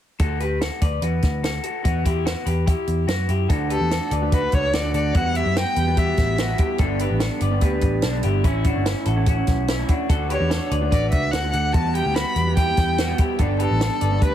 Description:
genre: jangly indie pop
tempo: 146 BPM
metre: 4/4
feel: straight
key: D major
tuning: A4 = 440 Hz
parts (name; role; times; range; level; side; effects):
- electric guitar through a small old amp; arpeggios; 0.2-14.3 s; B3 to D5; -26 LUFS; left 4 dB; none
- vintage muted picked electric bass; bass; 0.2-14.3 s; G1 to F#2; -23 LUFS; equal; none
- compact cocktail drum kit; drums; 0.2-14.3 s; hi-hat, kick drum, snare drum; -22 LUFS; equal; none
- electric guitar through a small old amp; accompaniment; 3.5-14.3 s; G2 to F#4; -27 LUFS; right 6 dB; none
- warm violin; melody; 3.7-6.6, 10.3-14.3 s; A4 to B5; -25 LUFS; left 1 dB; plate reverb
room: light reverb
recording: heavily compressed radio sound, multiband compression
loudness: -19 LUFS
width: side -10 dB against mid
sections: 0.2-3.5 A section; 3.5-14.3 B section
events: none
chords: 0.2 D; 1.8 Emadd9; 3.5 D; 5.1 Emadd9; 6.8 G; 8.4 A; 10.1 D; 11.7 Emadd9; 13.4 G

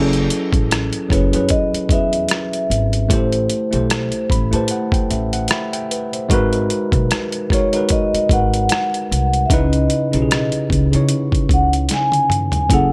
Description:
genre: R&B, neo-soul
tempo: 75 BPM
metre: 4/4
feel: swing 56% on 16ths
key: unclear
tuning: A4 = 440 Hz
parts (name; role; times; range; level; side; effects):
- tine electric piano; accompaniment; 0.0-12.9 s; C#3 to B5; -22 LUFS; equal; overdrive
- upright bass; bass; 0.0-12.9 s; F#1 to C#3; -22 LUFS; equal; none
- dusty soul sampler-style drum kit; drums; 0.1-12.9 s; hi-hat, kick drum, rim click, snare drum, toms; -22 LUFS; equal; overdrive
- vibraphone with soft mallets; melody; 1.1-12.9 s; C5 to G#5; -23 LUFS; equal; none
room: light reverb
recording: faint mains hum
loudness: -18 LUFS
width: mono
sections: 0.0-12.9 A section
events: tine electric piano fill 3.9-6.3; drum fill 11.9-12.7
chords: 0.0 F#m9; 3.1 Am9; 6.3 G#m9; 9.5 C#m9

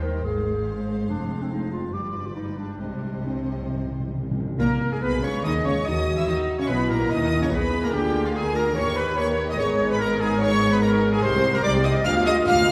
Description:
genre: classical, dramatic, fast romantic movement for symphony orchestra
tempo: 144 BPM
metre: 4/4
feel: rubato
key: C minor, G# minor from 4.6 s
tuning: A4 = 445 Hz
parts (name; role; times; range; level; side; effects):
- rich symphonic violin section; melody; 0.0-12.7 s; D5 to F6; -36 LUFS; equal; none
- dark clarinet; second line; 0.0-12.7 s; C4 to F5; -33 LUFS; equal; none
- warm symphonic violin section; second line; 0.0-12.7 s; E#4 to F5; -35 LUFS; equal; none
- rich symphonic viola section; accompaniment; 0.0-12.7 s; G3 to G4; -34 LUFS; equal; none
- rich symphonic cello section; bass; 0.0-12.7 s; C2 to E3; -30 LUFS; equal; none
- rich symphonic double bass section; bass; 0.0-12.7 s; F1 to Eb2; -31 LUFS; equal; none
- timpani; percussion; 2.8-4.6 s; C3; -32 LUFS; equal; none
- clear oboe; second line; 4.6-12.7 s; E#4 to F5; -35 LUFS; equal; none
- small flute group; second line; 4.6-12.7 s; E#4 to F5; -34 LUFS; equal; none
- dark French horn section; sustained chords; 4.6-12.7 s; E4 to A#4; -29 LUFS; equal; none
- clear trumpet; stabs; 4.6-12.7 s; E#4 to F5; -33 LUFS; equal; none
room: wet concert hall reverb, RT60 2.1 s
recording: heard from further back in the room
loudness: -23 LUFS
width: mono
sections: 0.0-4.6 A section; 4.6-12.7 B section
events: timpani fill 2.8-4.6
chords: 0.2 Fm/Ab; 1.1 Fm; 1.9 G; 2.8 Cm; 4.6 G#m; 5.5 G#5; 6.3 A#dim; 8.0 A#7/D; 8.8 D#; 9.6 G#m; 11.2 Cm; 12.1 G7/D

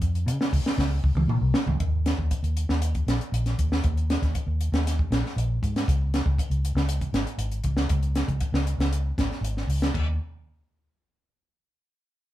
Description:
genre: afrobeat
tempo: 118 BPM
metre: 4/4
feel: straight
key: unclear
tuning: A4 = 440 Hz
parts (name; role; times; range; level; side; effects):
- vintage muted fingered electric bass; bass; 0.0-10.2 s; Ab1 to Db3; -25 LUFS; equal; none
- compact cocktail drum kit; drums; 0.0-10.1 s; crash cymbal, hi-hat, kick drum, snare drum, toms; -26 LUFS; equal; none
room: light reverb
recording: band playing live in one room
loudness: -23 LUFS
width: side -14 dB against mid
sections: 0.0-1.8 A section; 1.8-9.9 B section; 9.9-12.0 C section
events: drum fill 0.8-1.8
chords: none

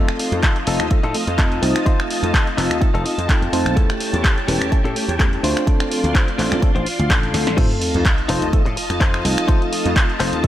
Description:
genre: filtered disco house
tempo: 126 BPM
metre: 4/4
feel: swing 54% on 16ths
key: F mixolydian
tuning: A4 = 440 Hz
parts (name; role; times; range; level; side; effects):
- reed electric piano; accompaniment; 0.0-10.5 s; A3 to C5; -23 LUFS; equal; fast tremolo, phaser, sidechain pumping, low-pass filter
- string machine, full ensemble; sustained chords; 0.0-10.5 s; F4 to C6; -26 LUFS; equal; ensemble chorus, sidechain pumping, low-pass filter
- direct-recorded clean electric guitar; riff; 0.0-10.4 s; C#4 to A5; -26 LUFS; left 4 dB; sidechain pumping, low-pass filter
- dry thumbed slap bass; bass; 0.0-10.5 s; E1 to A2; -23 LUFS; equal; sidechain pumping, low-pass filter
- punchy analog drum machine; drums; 0.1-10.5 s; crash cymbal, finger snaps, handclaps, hi-hat, snare drum; -23 LUFS; equal; studio reverb, sidechain pumping on hats, sidechain pumping on cymbals
- electronic kick drum; drums; 0.4-10.5 s; none; -17 LUFS; equal; studio reverb
- sub drop; sound effects; 7.6-9.5 s; none; -29 LUFS; equal; none
room: light reverb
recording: none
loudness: -16 LUFS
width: side -12 dB against mid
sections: 0.0-7.6 A section; 7.6-10.5 B section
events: clean electric guitar fill 2.8-3.8; drum fill 7.3; drop 7.6-10.5; impact 7.6-9.5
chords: 0.0 F7; 3.8 A7/E; 5.4 Dm7; 7.6 F7

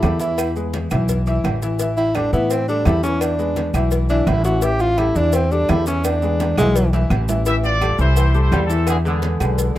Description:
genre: latin, salsa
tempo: 170 BPM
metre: 4/4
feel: straight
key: unclear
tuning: A4 = 440 Hz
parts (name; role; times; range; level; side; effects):
- breathy tenor saxophone; melody; 0.0-6.9 s; G#3 to G4; -21 LUFS; equal; none
- clear grand piano; accompaniment; 0.0-9.8 s; E3 to E5; -24 LUFS; left 3 dB; none
- upright bass; bass; 0.0-9.8 s; A1 to A2; -19 LUFS; equal; none
- claves; percussion; 0.0-9.6 s; none; -38 LUFS; right 4 dB; none
- congas; percussion; 0.0-9.8 s; none; -32 LUFS; left 1 dB; none
- cowbell; percussion; 0.0-9.8 s; none; -29 LUFS; left 6 dB; none
- maracas; percussion; 0.0-9.8 s; none; -35 LUFS; right 5 dB; none
- timbales and agogo bells; percussion; 0.0-9.8 s; none; -29 LUFS; right 8 dB; none
- warm trumpet section; melody; 7.5-9.4 s; B3 to E5; -23 LUFS; equal; none
- bright trombone section; second line; 7.5-9.8 s; D3 to G3; -27 LUFS; equal; none
room: small room ambience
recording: rough home demo mix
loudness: -16 LUFS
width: side -14 dB against mid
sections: 0.0-7.5 A section; 7.5-9.8 B section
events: tenor saxophone solo 0.0-7.5; drum fill 6.0-7.5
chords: 0.4 E; 1.8 A5; 3.2 E7; 4.6 A5; 6.0 E7; 7.5 Am7; 8.9 E7

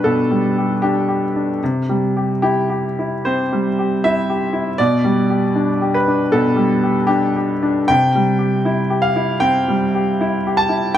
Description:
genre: neoclassical minimalist piano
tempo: 78 BPM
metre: 4/4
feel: rubato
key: C major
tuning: A4 = 438 Hz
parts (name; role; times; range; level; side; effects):
- bright baby grand piano; solo; 0.0-11.0 s; B2 to A5; -15 LUFS; equal; none
room: moderate large studio reverb, RT60 0.9 s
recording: band playing live in one room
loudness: -15 LUFS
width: side -11 dB against mid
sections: 0.0-11.0 A section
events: none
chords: 0.0 G/B; 1.6 C; 4.8 G/B; 7.9 C

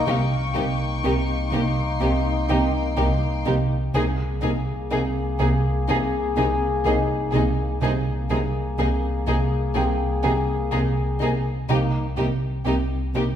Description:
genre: cinematic, suspense film score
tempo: 62 BPM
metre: 4/4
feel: straight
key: unclear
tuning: A4 = 440 Hz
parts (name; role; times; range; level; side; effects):
- clear French horn section; sustained chords; 0.0-12.1 s; Bb3 to Ab4; -28 LUFS; left 4 dB; none
- warm sub bass; drone; 0.0-13.4 s; C2; -28 LUFS; equal; none
- rich studio violin section; texture; 0.0-3.4 s; G5 to Db6; -32 LUFS; left 5 dB; none
- warm baby grand piano; texture; 0.0-13.4 s; Eb4 to G5; -35 LUFS; left 1 dB; none
- dark studio violin section; melody; 0.1-13.2 s; G4 to Ab4; -30 LUFS; left 2 dB; none
- warm chamber violin section; second line; 0.1-13.2 s; Eb4; -33 LUFS; left 2 dB; none
- warm chamber viola section; accompaniment; 0.1-13.2 s; Bb3; -33 LUFS; right 3 dB; none
- rubbery square bass; riff; 0.1-13.4 s; C3 to C4; -27 LUFS; right 2 dB; none
- clear chamber double bass section; bass; 0.1-13.2 s; C2; -29 LUFS; right 1 dB; none
- dark chamber cello section; bass; 0.1-13.2 s; C3; -30 LUFS; right 3 dB; none
room: wet scoring stage reverb, RT60 1.6 s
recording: minimal, uncompressed stereo recording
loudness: -20 LUFS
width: side -9 dB against mid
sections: 0.0-13.4 A section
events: none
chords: 0.0 Cm7; 3.9 Abadd9/C; 11.7 Cm7

